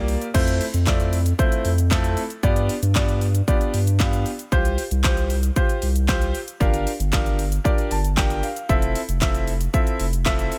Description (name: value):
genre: dance-pop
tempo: 115 BPM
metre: 4/4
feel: straight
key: F major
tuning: A4 = 441 Hz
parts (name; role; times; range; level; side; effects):
- warm concert grand piano; accompaniment; 0.0-10.5 s; A3 to A5; -28 LUFS; equal; sidechain pumping
- saturated sub bass; bass; 0.0-10.5 s; F1 to G2; -24 LUFS; equal; sidechain pumping
- pop drum kit; drums; 0.1-10.6 s; crash cymbal, handclaps, hi-hat, kick drum, shaker, snare drum; -25 LUFS; equal; none
room: digital ambience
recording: none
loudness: -21 LUFS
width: mono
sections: 0.3-10.6 A section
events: grand piano fill 7.7-8.7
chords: 0.3 Fmaj7; 2.4 G7; 4.5 Csus4; 6.6 Gm7; 8.7 Fmaj7